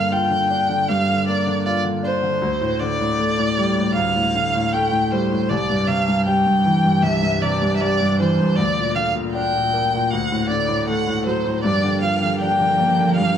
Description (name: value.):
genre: pop ballad.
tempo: 78 BPM.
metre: 4/4.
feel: straight.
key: G minor.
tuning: A4 = 439 Hz.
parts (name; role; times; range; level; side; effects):
warm violin; melody; 0.0-13.4 s; C5 to G5; -20 LUFS; equal; none.
clear concert grand piano; accompaniment; 0.0-13.4 s; C2 to F4; -20 LUFS; left 1 dB; none.
warm studio string section; sustained chords; 11.6-13.4 s; F3 to G4; -22 LUFS; right 4 dB; none.
room: moderate concert hall reverb, RT60 1.9 s, small room ambience.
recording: none.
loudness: -17 LUFS.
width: side -8 dB against mid.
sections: 0.0-13.4 A section.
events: none.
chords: 0.0 Gm7; 2.4 Dsus4; 5.5 C; 8.6 Gm/D; 10.1 D; 11.6 Gm7.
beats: 0.11 0.88 1.65 | 2.42 3.19 3.96 4.72 | 5.49 6.26 7.03 7.80 | 8.57 9.34 10.11 10.88 | 11.65 12.42 13.19.